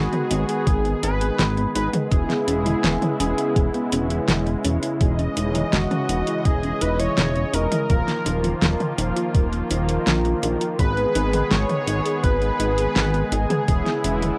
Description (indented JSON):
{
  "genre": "synthwave",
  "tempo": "83 BPM",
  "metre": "4/4",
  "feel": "straight",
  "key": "unclear",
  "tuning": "A4 = 440 Hz",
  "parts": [
    { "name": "unison lead", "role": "melody", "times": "0.0-14.4 s", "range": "F#4 to C#5", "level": "-29 LUFS", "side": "equal", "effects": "cassette tape, analog delay" },
    { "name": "warm analog pad", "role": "sustained chords", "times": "0.0-14.4 s", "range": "C#3 to D#5", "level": "-28 LUFS", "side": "equal", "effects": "chorus, sidechain pumping" },
    { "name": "thumb-piano-like synth pluck", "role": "arpeggios", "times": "0.0-14.3 s", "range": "E#3 to G#4", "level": "-32 LUFS", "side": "equal", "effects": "chorus, tape echo, plate reverb" },
    { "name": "mellow synth brass", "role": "stabs", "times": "0.0-14.4 s", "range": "E#3 to D#5", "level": "-34 LUFS", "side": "equal", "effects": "none" },
    { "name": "chorused synth bass", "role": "bass", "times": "0.0-14.3 s", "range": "D#1 to A#1", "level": "-26 LUFS", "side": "equal", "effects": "none" },
    { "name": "pop drum kit", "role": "drums", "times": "0.1-14.4 s", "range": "hi-hat, snare drum, toms", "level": "-27 LUFS", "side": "equal", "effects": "cassette tape" },
    { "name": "electronic kick drum", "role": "drums", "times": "0.7-13.8 s", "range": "none", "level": "-22 LUFS", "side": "equal", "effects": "cassette tape" }
  ],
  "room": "moderate booth ambience, RT60 0.2 s",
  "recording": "home recording on cassette",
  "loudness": "-22 LUFS",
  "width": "mono",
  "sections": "0.0-14.4 A section",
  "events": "none",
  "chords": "0.0 G#m; 2.1 E6; 5.0 C#madd9/E; 7.9 D#sus2; 10.8 G#m; 13.7 E6"
}